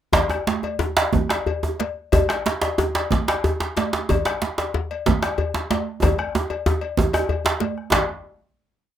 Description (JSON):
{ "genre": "west african traditional, West African drum ensemble", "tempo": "124 BPM (dotted quarters)", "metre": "12/8", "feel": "straight", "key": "none", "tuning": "none", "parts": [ { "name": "bombo", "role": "percussion", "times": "0.1-8.1 s", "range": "none", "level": "-26 LUFS", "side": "left 2 dB", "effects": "none" }, { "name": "congas", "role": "percussion", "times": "0.1-8.1 s", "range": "none", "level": "-25 LUFS", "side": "right 7 dB", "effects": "none" }, { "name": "cowbell", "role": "percussion", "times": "0.1-8.1 s", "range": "none", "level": "-29 LUFS", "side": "left 8 dB", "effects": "none" }, { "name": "djembe", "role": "percussion", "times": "0.1-8.1 s", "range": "none", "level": "-26 LUFS", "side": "left 3 dB", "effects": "none" }, { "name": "djembe", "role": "percussion", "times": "0.1-8.1 s", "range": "none", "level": "-22 LUFS", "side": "right 2 dB", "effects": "none" } ], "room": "light reverb", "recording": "rough home demo mix", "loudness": "-20 LUFS", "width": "side -10 dB against mid", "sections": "0.1-7.9 A section; 7.9-9.0 final hit", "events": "speeding up 0.1-9.0; drum fill 6.0-7.9", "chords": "none" }